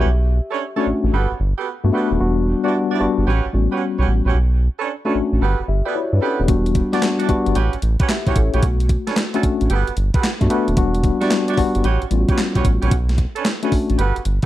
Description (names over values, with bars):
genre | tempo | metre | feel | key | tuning
R&B, new jack swing | 112 BPM | 4/4 | swing 66% on 16ths | unclear | A4 = 438 Hz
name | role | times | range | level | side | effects
mellow tine electric piano | accompaniment | 0.0-14.0 s | G3 to E5 | -20 LUFS | left 4 dB | medium stereo tremolo
warm horn section | stabs | 0.0-14.5 s | B3 to D5 | -25 LUFS | right 8 dB | tape echo
round analog bass | bass | 0.0-14.4 s | D#1 to G2 | -18 LUFS | equal | none
gated 80s digital drum machine | drums | 6.5-14.5 s | handclaps, hi-hat, kick drum, snare drum | -20 LUFS | equal | gated reverb, gated reverb snare, overdrive
room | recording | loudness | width
digital ambience | dry, close 1970s-style studio recording | -16 LUFS | side -14 dB against mid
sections
0.0-14.5 A section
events
none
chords
0.1 Bm9; 1.1 Gmaj9; 2.2 Em9; 3.3 A13; 4.3 Bm9; 5.4 Gmaj9; 6.5 Em9; 7.6 A13; 8.6 Bm9; 9.7 Gmaj9; 10.8 Em9; 11.8 A13; 12.9 Bm9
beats
| 0.06 0.59 1.13 1.66 | 2.20 2.73 3.27 3.81 | 4.34 4.88 5.41 5.95 | 6.49 7.02 7.56 8.09 | 8.63 9.16 9.70 10.23 | 10.77 11.31 11.84 12.38 | 12.91 13.45 13.98